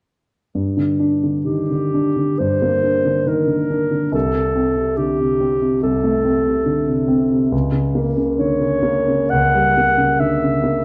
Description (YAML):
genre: classical, romantic duo for clarinet and grand piano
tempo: 62-72 BPM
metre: 4/4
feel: rubato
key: G minor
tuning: A4 = 440 Hz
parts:
  - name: warm concert grand piano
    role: accompaniment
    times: 0.5-10.8 s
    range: C2 to D4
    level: -20 LUFS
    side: equal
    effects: none
  - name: warm clarinet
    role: melody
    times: 1.5-10.8 s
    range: G4 to F#5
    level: -21 LUFS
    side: equal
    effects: none
room: wet recital hall reverb, RT60 1.7 s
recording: dark, warm production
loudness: -18 LUFS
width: mono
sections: 0.6-10.8 A section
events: none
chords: 0.6 Gm; 4.1 Am7/C; 7.5 C#dim7(no3)